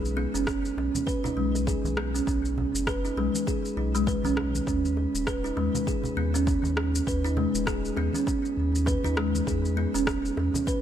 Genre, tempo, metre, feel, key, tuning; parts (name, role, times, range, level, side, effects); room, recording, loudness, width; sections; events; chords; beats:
organic downtempo; 100 BPM; 4/4; swing 58% on 16ths; A4 = 440 Hz
kalimba; arpeggios; 0.0-10.8 s; G#3 to B4; -27 LUFS; right 1 dB; digital delay, shimmer reverb
warm sub bass; bass; 0.0-10.5 s; D#1 to E2; -29 LUFS; equal
electronic shaker and rim click; drums; 0.1-10.8 s; -34 LUFS; left 1 dB; overdrive
congas and bongos; percussion; 0.1-10.6 s; -37 LUFS; right 1 dB
electronic kick drum; drums; 0.5-10.8 s; -31 LUFS; equal; overdrive
light reverb, small room ambience; lossy compression artefacts; -24 LUFS; side -10 dB against mid
0.0-10.8 A section
0.0 B5; 4.7 D#7sus4; 9.5 E
0.47 1.07 1.67 | 2.27 2.87 3.47 4.07 | 4.67 5.27 5.87 6.47 | 7.07 7.67 8.27 8.87 | 9.47 10.07 10.67